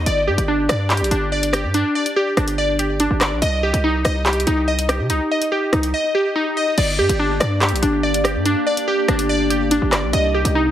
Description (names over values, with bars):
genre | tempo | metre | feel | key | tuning
hip hop, drill | 143 BPM | 4/4 | half-time | G minor | A4 = 441 Hz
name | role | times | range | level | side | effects
glassy wavetable pluck | arpeggios | 0.0-10.7 s | D4 to Eb5 | -18 LUFS | equal | chorus, tape echo
hard-hitting 808-style bass | bass | 0.0-10.7 s | G1 to C3 | -21 LUFS | equal | none
drill drum kit | drums | 0.1-10.5 s | crash cymbal, handclaps, hi-hat, rim click | -22 LUFS | equal | none
warbly tape-like pad | sustained chords | 7.3-10.7 s | C3 to G4 | -24 LUFS | left 1 dB | chorus, built-in reverb
room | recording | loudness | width
digital ambience | heavily compressed radio sound | -16 LUFS | side -11 dB against mid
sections
0.0-6.8 A section; 6.8-10.7 B section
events
none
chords
0.1 G5; 3.4 Cm; 6.8 Gm; 10.1 Cm